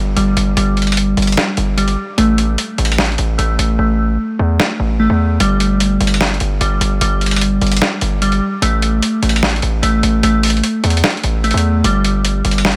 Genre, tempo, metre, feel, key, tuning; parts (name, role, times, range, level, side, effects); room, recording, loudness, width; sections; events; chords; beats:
hip hop, trap; 149 BPM; 4/4; half-time; A4 = 441 Hz
glassy digital keys; arpeggios; 0.0-12.8 s; G3 to A3; -19 LUFS; equal; chorus, low-pass filter, digital delay
hard-hitting 808-style bass; bass; 0.0-12.8 s; G1 to E2; -18 LUFS; equal
boom bap sampler-style drum kit; drums; 0.2-12.8 s; hi-hat, snare drum; -20 LUFS; equal
light reverb; -15 LUFS; mono
0.0-12.8 A section
filter sweep on synth keys 0.0-5.4; hi-hats muted 3.8-5.4
0.0 N.C.; 2.2 A5; 5.4 N.C.; 8.6 A5; 11.8 N.C.
0.17 | 0.57 0.97 1.37 1.78 | 2.18 2.58 2.98 3.39 | 3.79 4.19 4.59 5.00 | 5.40 5.80 6.21 6.61 | 7.01 7.41 7.82 8.22 | 8.62 9.02 9.43 9.83 | 10.23 10.63 11.04 11.44 | 11.84 12.25 12.65